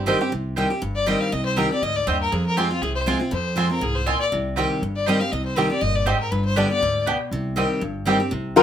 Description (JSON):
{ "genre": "bluegrass", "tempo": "240 BPM", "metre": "4/4", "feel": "swing 54% on 8ths", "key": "C minor", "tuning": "A4 = 439 Hz", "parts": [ { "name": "bluegrass banjo", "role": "melody", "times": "0.0-0.3, 4.6-8.6 s", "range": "C4 to C5", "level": "-27 LUFS", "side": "right 6 dB", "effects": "none" }, { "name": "picked steel-string acoustic guitar", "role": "accompaniment", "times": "0.0-8.6 s", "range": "F2 to G4", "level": "-24 LUFS", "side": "left 1 dB", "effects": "none" }, { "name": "upright bass", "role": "bass", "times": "0.0-8.6 s", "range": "G1 to F2", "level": "-27 LUFS", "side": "equal", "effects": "none" }, { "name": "mandolin", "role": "stabs", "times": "0.1-8.6 s", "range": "B3 to Ab5", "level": "-25 LUFS", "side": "right 3 dB", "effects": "none" }, { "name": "clear fiddle", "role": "melody", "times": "1.0-7.0 s", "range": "F4 to F5", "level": "-24 LUFS", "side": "left 3 dB", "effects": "none" }, { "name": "lap resonator guitar", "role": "second line", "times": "8.6 s", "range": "G4 to C5", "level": "-10 LUFS", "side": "left 5 dB", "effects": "none" } ], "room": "moderate studio reverb, RT60 0.5 s", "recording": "minimal, uncompressed stereo recording", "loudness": "-20 LUFS", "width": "side -9 dB against mid", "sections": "0.3-8.3 A section", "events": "none", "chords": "0.3 Cm; 2.3 Fm; 4.3 Cm; 6.3 G; 7.3 Cm" }